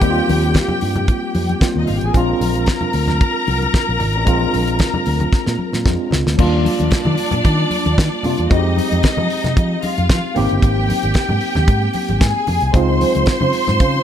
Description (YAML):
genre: disco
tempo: 113 BPM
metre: 4/4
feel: straight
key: Eb major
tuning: A4 = 440 Hz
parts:
  - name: clear studio string section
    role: second line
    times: 0.0-14.0 s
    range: D4 to C6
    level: -21 LUFS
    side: left 1 dB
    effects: none
  - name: tine electric piano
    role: accompaniment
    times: 0.0-14.0 s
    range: Gb3 to G4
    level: -21 LUFS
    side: equal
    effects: overdrive, medium stereo tremolo
  - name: fingered electric bass with an envelope filter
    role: bass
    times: 0.0-14.0 s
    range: G1 to F3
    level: -19 LUFS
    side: equal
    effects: none
  - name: damped 70s drum kit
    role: drums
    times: 0.0-13.9 s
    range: crash cymbal, hi-hat, kick drum, snare drum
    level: -18 LUFS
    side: equal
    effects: none
  - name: congas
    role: percussion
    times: 0.2-14.0 s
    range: none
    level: -26 LUFS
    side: left 2 dB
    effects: none
room: little or no reverb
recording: none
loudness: -14 LUFS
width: side -9 dB against mid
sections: 0.0-6.4 A section; 6.4-14.0 B section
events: drum fill 5.3-6.4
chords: 0.0 Eb6; 2.1 Bb7; 6.4 Ebmaj7; 8.5 Fm7; 10.4 Abmaj7; 12.7 Dbmaj7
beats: | 0.01 0.55 1.08 1.61 | 2.14 2.67 3.20 3.74 | 4.27 4.80 5.33 5.86 | 6.39 6.92 7.45 7.98 | 8.51 9.04 9.57 10.10 | 10.63 11.16 11.69 12.22 | 12.75 13.28 13.81